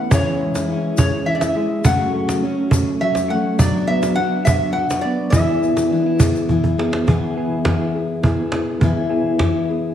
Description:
acoustic folk duo or small band; 104 BPM; 3/4; straight; E mixolydian; A4 = 440 Hz
metal-body resonator slide guitar; melody; 0.0-6.7 s; C#5 to F#5; -22 LUFS; equal
picked steel-string acoustic guitar; accompaniment; 0.0-9.9 s; F#2 to B4; -21 LUFS; left 3 dB
mellow electric guitar; arpeggios; 0.0-9.9 s; E3 to G#4; -24 LUFS; right 3 dB; harmonic tremolo
cajon; percussion; 0.1-9.5 s; -18 LUFS; right 1 dB
tube shaker; percussion; 0.1-6.4 s; -33 LUFS; left 6 dB
wet large studio reverb, RT60 1.3 s; lossy compression artefacts; -16 LUFS; side -10 dB against mid
0.0-7.1 A section; 7.1-9.9 B section
drum fill 6.5-7.1
0.1 C#m; 1.9 F#m; 3.6 Bm; 5.3 E

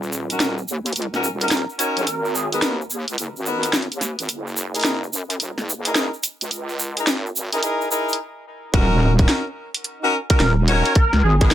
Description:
glitch hop; 108 BPM; 4/4; swing 64% on 16ths; Eb phrygian; A4 = 439 Hz
wobble bass; bass; 0.0-11.5 s; Eb1 to Gb2; -23 LUFS; equal; chorus, tube saturation, high-pass filter
egg shaker; percussion; 0.0-8.2 s; -29 LUFS; right 2 dB
clear horn section; stabs; 0.3-11.5 s; Cb4 to Bb4; -24 LUFS; left 1 dB; sidechain pumping, low-pass filter, dub echo
drum and bass drum kit; drums; 0.3-11.5 s; hi-hat, snare drum; -22 LUFS; equal; small room ambience
sync lead; melody; 1.4-2.6, 10.3-11.5 s; Ab4 to Db5; -24 LUFS; equal; ensemble chorus, dub echo
electronic kick drum; drums; 8.7-11.5 s; -16 LUFS; equal; small room ambience
light reverb; high-pass filter; -19 LUFS; side -12 dB against mid
0.0-8.7 A section; 8.7-11.5 B section
build-up 0.0-8.7; break 8.2-8.7; drop 8.7-11.5
0.0 Ebm7; 2.1 Abm9; 4.3 Gb13; 6.5 Dbm; 8.7 Ebm7; 11.0 Abm9

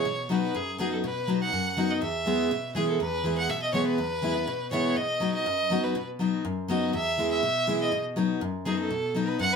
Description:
bluegrass; 244 BPM; 4/4; straight; E major; A4 = 440 Hz
clear fiddle; melody; 0.0-9.6 s; G#4 to F#5; -28 LUFS; right 1 dB
picked steel-string acoustic guitar; accompaniment; 0.0-9.6 s; E2 to F#4; -27 LUFS; left 1 dB
wet studio reverb, RT60 0.6 s; band playing live in one room; -25 LUFS; side -6 dB against mid
0.0-3.0 A section; 3.0-9.6 A section
0.0 B; 2.0 E; 5.0 B; 6.9 E; 7.9 B

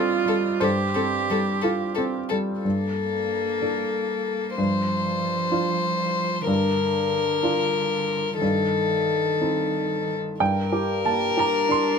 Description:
neoclassical piano and strings; 62 BPM (dotted quarters); 6/8; rubato; G minor; A4 = 440 Hz
rich cello; second line; 0.0-12.0 s; D3 to G4; -29 LUFS; right 8 dB
warm baby grand piano; accompaniment; 0.0-12.0 s; G2 to C6; -25 LUFS; right 1 dB
rich violin; melody; 0.3-12.0 s; A4 to C5; -25 LUFS; left 6 dB
light reverb; close, detailed microphones; -21 LUFS; side -6 dB against mid
0.0-2.6 A section; 2.6-10.4 B section; 10.4-12.0 C section
0.0 Fadd9/G; 2.6 Gmadd9; 4.6 Dm7/G; 8.4 Adim/G; 10.4 Gm

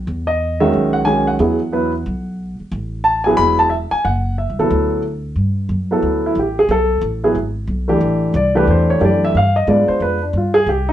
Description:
jazz piano trio; 181 BPM; 4/4; swing 63% on 8ths; G major from 5.4 s; A4 = 440 Hz
upright bass; bass; 0.0-10.9 s; E1 to Ab2; -20 LUFS; equal
warm grand piano; melody; 0.3-10.9 s; D#3 to B5; -15 LUFS; equal
moderate studio reverb, RT60 0.6 s; band playing live in one room, nothing above 10.4 kHz; -14 LUFS; side -12 dB against mid
0.0-5.4 A section; 5.4-10.9 B section
grand piano solo 5.4-10.9
0.1 E69; 2.7 A5; 4.0 F#7(b5, no3); 4.7 D; 5.4 Gmaj7; 6.7 B5; 7.4 E (rootless); 8.0 Am7; 9.3 G7b9

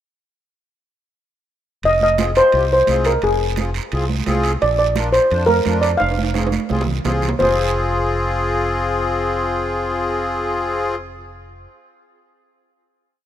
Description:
latin, cumbia; 172 BPM; 4/4; straight; F dorian; A4 = 441 Hz
fingered electric bass; bass; 1.8-11.7 s; F1 to F2; -23 LUFS; equal
congas; percussion; 1.8-7.5 s; -26 LUFS; right 6 dB
guiro; percussion; 1.8-7.5 s; -31 LUFS; right 10 dB
timbales; percussion; 1.8-7.5 s; -29 LUFS; right 6 dB
steel pan; melody; 1.9-11.6 s; Ab4 to F5; -16 LUFS; equal
accordion; accompaniment; 2.2-11.0 s; C4 to C5; -22 LUFS; left 2 dB; light tremolo tuning
light reverb, small room ambience; rough home demo mix; -16 LUFS; side -10 dB against mid
1.8-7.4 A section; 7.4-10.2 final chord
drum fill 6.0-7.4
1.8 Fm; 4.6 Bb; 6.0 Fm

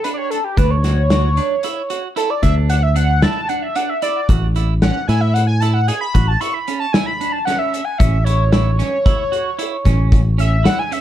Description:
progressive instrumental, band music in an uneven meter; 113 BPM; 7/4; straight; A major; A4 = 440 Hz
octave-doubled lead; melody; 0.0-11.0 s; G4 to C#6; -20 LUFS; equal; chorus, phaser, tape echo
clean electric guitar; arpeggios; 0.0-11.0 s; C#4 to G#4; -26 LUFS; right 10 dB
loose indie drum kit; drums; 0.0-11.0 s; hi-hat, kick drum, snare drum; -19 LUFS; equal
egg shaker; percussion; 0.3-10.8 s; -44 LUFS; left 18 dB
picked electric bass; bass; 0.6-10.7 s; A1 to A2; -15 LUFS; equal
light reverb; dark, warm production; -14 LUFS; side -12 dB against mid
0.0-11.0 A section
analog synth lead solo 0.0-11.0
0.0 G5; 0.6 D; 4.3 Amaj7; 8.0 A

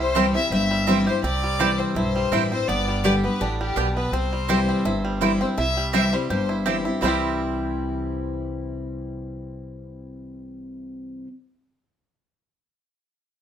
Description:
bluegrass; 166 BPM; 4/4; swing 53% on 8ths; C major; A4 = 440 Hz
bluegrass banjo; melody; 0.0-11.3 s; G3 to G4; -29 LUFS; right 4 dB
clear fiddle; melody; 0.0-6.6 s; G4 to E5; -28 LUFS; left 4 dB
clear fiddle; second line; 0.0-6.6 s; G4 to E5; -30 LUFS; left 3 dB
picked steel-string acoustic guitar; accompaniment; 0.0-11.3 s; G2 to G4; -25 LUFS; left 2 dB
upright bass; bass; 0.0-11.2 s; G1 to C2; -30 LUFS; right 1 dB
mandolin; stabs; 0.1-11.3 s; B3 to G5; -26 LUFS; right 6 dB
moderate studio reverb, RT60 0.7 s; -20 LUFS; side -9 dB against mid
0.0-5.6 A section; 5.6-7.0 B section; 7.0-9.9 C section
0.0 C; 2.7 G; 4.1 C

